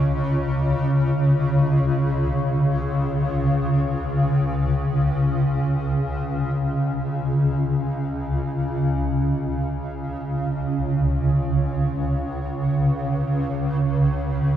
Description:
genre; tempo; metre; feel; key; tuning
world meditative, free-time meditation music; free time; none; none; unclear; A4 = 440 Hz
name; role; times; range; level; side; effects
granular cloud pad; solo; 0.0-14.6 s; C#2 to C#3; -20 LUFS; equal; built-in reverb, tape echo
room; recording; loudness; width
wet church reverb, RT60 3.0 s; none; -20 LUFS; side -10 dB against mid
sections
0.0-14.6 A section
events
none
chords
none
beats
free time

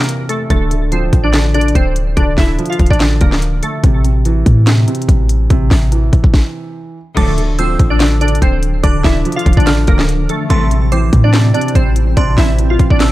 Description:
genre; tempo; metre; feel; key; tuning
hip hop, trap; 144 BPM; 4/4; half-time; D minor; A4 = 440 Hz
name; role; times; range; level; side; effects
glassy wavetable pluck; melody; 0.0-3.8, 7.2-13.1 s; A3 to F5; -19 LUFS; left 1 dB; chorus, low-pass filter, digital delay
dark baby grand piano; accompaniment; 0.0-13.1 s; C3 to F3; -20 LUFS; right 2 dB; low-pass filter
trap drum kit; drums; 0.0-13.1 s; crash cymbal, handclaps, hi-hat, kick drum, snare drum; -14 LUFS; equal; none
clean 808-style bass; bass; 0.5-13.1 s; D1 to A2; -13 LUFS; equal; none
delicate synth tine bell; second line; 7.2-13.1 s; C6 to F6; -25 LUFS; right 3 dB; chorus, digital delay
granular cloud pad; sustained chords; 8.3-13.1 s; D3 to C5; -24 LUFS; right 1 dB; built-in reverb
bright studio string section; stabs; 7.2-7.5, 10.5-10.8 s; C2 to F3; -24 LUFS; left 4 dB; none
room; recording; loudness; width
little or no reverb; none; -10 LUFS; side -16 dB against mid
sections
0.0-7.2 A section; 7.2-13.1 B section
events
break 0.0-0.5; stop 6.3-7.2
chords
0.0 Am; 0.5 Dm; 3.8 Am; 7.2 Dm; 10.5 Am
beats
0.09 | 0.50 0.92 1.34 1.75 | 2.17 2.59 3.00 3.42 | 3.84 4.25 4.67 5.09 | 5.50 5.92 6.34 6.75 | 7.17 7.59 8.00 8.42 | 8.84 9.25 9.67 10.09 | 10.50 10.92 11.34 11.75 | 12.17 12.59 13.00

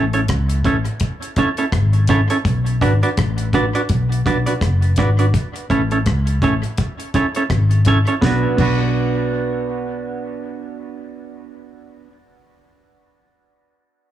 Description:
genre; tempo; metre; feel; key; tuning
roots reggae; 83 BPM; 4/4; swing 58% on 16ths; B dorian; A4 = 438 Hz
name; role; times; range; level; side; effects
semi-hollow electric guitar; accompaniment; 0.0-12.1 s; B3 to D5; -20 LUFS; right 3 dB; dub echo
vintage muted fingered electric bass; bass; 0.0-12.0 s; F#1 to C#2; -17 LUFS; left 1 dB; none
deep reggae drum kit; drums; 0.1-8.8 s; crash cymbal, hi-hat, kick drum, rim click, snare drum; -23 LUFS; left 1 dB; dub echo
room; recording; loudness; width
light reverb, small room ambience; none; -15 LUFS; side -12 dB against mid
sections
0.0-8.2 A section; 8.2-11.1 B section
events
none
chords
0.0 A; 2.4 Bm; 5.3 A; 8.2 Bm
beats
0.28 1.00 1.72 | 2.45 3.17 3.89 4.61 | 5.33 6.06 6.78 7.50 | 8.22 8.95 9.67 10.39

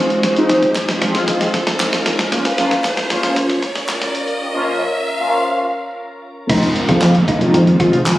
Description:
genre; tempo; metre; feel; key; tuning
dance-pop; 115 BPM; 4/4; straight; F minor; A4 = 442 Hz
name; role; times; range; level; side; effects
glassy FM pad; sustained chords; 0.0-8.2 s; Eb3 to C5; -22 LUFS; equal; ensemble chorus, built-in reverb, sidechain pumping
riser and downlifter; sound effects; 0.0-8.2 s; none; -23 LUFS; equal; none
lo-fi sampler-style drum kit; drums; 0.1-8.2 s; crash cymbal, handclaps, hi-hat, kick drum, snare drum; -20 LUFS; equal; none
mellow synth brass; accompaniment; 0.2-8.0 s; F3 to G4; -18 LUFS; equal; chorus, phaser, sidechain pumping
group handclap; percussion; 0.8-8.2 s; none; -27 LUFS; equal; none
mallet-like synth pluck; melody; 6.5-7.9 s; Eb4 to F5; -20 LUFS; left 1 dB; chorus, phaser
plucky analog bass; bass; 6.5-8.0 s; F1 to F2; -14 LUFS; equal; sidechain pumping
room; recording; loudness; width
moderate lush hall reverb, RT60 2.1 s; recorded on a phone in the room, club reverb, high-pass filter; -14 LUFS; side -15 dB against mid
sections
0.0-6.5 A section; 6.5-8.2 B section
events
build-up 0.0-6.5; drum fill 0.0-4.4; riser 0.0-6.5; drop 6.5-8.2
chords
0.0 Fm7; 2.3 Bbm; 6.5 Fm7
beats
| 0.23 0.76 1.28 1.80 | 2.32 2.84 3.37 3.89 | 4.41 4.93 5.45 5.97 | 6.50 7.02 7.54 8.06

